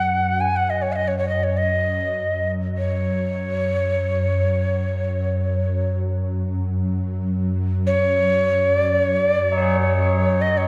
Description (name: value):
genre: world meditative, free-time meditation music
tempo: free time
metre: none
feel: none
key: unclear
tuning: A4 = 441 Hz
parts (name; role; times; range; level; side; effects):
- breathy Native American-style cedar flute; melody; 0.0-10.7 s; C#5 to G#5; -23 LUFS; equal; none
- ethereal airy pad; drone; 0.0-10.7 s; F#2; -25 LUFS; equal; ensemble chorus, built-in reverb, phaser
- tubular bells; texture; 9.5-10.7 s; D#4 to G#4; -29 LUFS; equal; none
room: wet plate reverb, RT60 2.7 s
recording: dark, warm production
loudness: -21 LUFS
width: mono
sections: 0.0-10.7 A section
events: none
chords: none